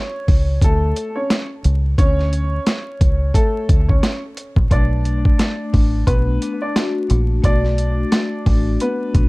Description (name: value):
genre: hip hop, boom-bap hip-hop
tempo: 88 BPM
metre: 4/4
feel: swing 60% on 16ths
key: D major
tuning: A4 = 439 Hz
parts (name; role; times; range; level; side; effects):
- warm upright piano; melody; 0.0-9.3 s; A3 to D5; -24 LUFS; equal; high-pass filter, low-pass filter, analog delay
- deep dub fingered electric bass; bass; 0.3-9.3 s; A1 to D2; -17 LUFS; equal; none
- dusty soul sampler-style drum kit; drums; 0.3-9.3 s; hi-hat, kick drum, snare drum; -16 LUFS; equal; overdrive, vintage 12-bit sampler grit
- vibraphone with soft mallets; accompaniment; 4.7-9.3 s; A3 to F#4; -24 LUFS; left 3 dB; cassette tape, high-pass filter, low-pass filter
room: little or no reverb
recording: dark, warm production, vinyl crackle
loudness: -15 LUFS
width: side -23 dB against mid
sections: 0.0-9.3 A section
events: break 0.0-4.7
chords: 0.0 D5; 4.7 Bm7